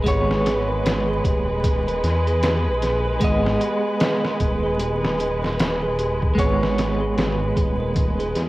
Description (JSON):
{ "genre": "trip hop", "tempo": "76 BPM", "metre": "4/4", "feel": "swing 60% on 16ths", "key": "unclear", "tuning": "A4 = 440 Hz", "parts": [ { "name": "clean electric guitar", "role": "accompaniment", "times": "0.0-8.3 s", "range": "G#3 to D#5", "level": "-25 LUFS", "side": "right 1 dB", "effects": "tremolo, cassette tape, tape echo" }, { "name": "muted chamber violin section", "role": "sustained chords", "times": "0.0-8.5 s", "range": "G#3 to B4", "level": "-25 LUFS", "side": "equal", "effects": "cassette tape" }, { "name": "dark detuned saw bass", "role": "bass", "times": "0.0-8.5 s", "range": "D#1 to E2", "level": "-24 LUFS", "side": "equal", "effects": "none" }, { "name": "music box", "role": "arpeggios", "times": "0.1-8.5 s", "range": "G4 to A#4", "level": "-30 LUFS", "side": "right 2 dB", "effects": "cassette tape, tape echo" }, { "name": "trip hop sampler-style drum kit", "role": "drums", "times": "0.1-8.5 s", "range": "hi-hat, kick drum, snare drum", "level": "-24 LUFS", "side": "equal", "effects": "small room reverb, cassette tape" } ], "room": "light reverb", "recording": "home recording on cassette, vinyl crackle", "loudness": "-19 LUFS", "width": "side -18 dB against mid", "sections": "0.0-8.5 A section", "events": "none", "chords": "0.1 E6; 3.2 G#m; 6.4 E6 (rootless)", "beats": "| 0.06 0.85 1.64 2.43 | 3.22 4.01 4.80 5.59 | 6.38 7.17 7.96" }